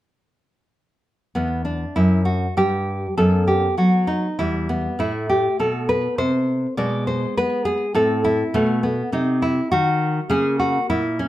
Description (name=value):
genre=classical, baroque-style dance for nylon-string guitar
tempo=101 BPM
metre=3/4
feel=rubato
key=E minor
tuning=A4 = 437 Hz
part: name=nylon-string guitar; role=solo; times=1.4-11.3 s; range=E2 to D5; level=-18 LUFS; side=equal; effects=slapback echo
room=light reverb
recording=none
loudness=-18 LUFS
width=side -14 dB against mid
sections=1.3-11.3 A section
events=none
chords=1.3 Em; 3.2 B5/F#; 4.4 Em; 5.0 Am; 6.8 Bm6; 8.0 Am; 8.5 B; 10.3 A#m7b5